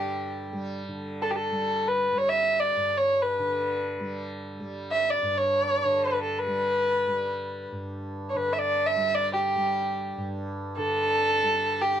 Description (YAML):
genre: indian classical, Hindustani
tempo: free time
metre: none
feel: none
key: G raga yaman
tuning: A4 = 438 Hz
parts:
  - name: dark violin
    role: melody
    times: 0.0-12.0 s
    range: G4 to E5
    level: -24 LUFS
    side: equal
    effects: none
  - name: tanpura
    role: drone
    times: 0.0-12.0 s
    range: G2 to G3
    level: -34 LUFS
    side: right 1 dB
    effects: none
room: light reverb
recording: dry, close 1970s-style studio recording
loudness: -24 LUFS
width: side -10 dB against mid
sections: 0.9-12.0 A section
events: none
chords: none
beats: free time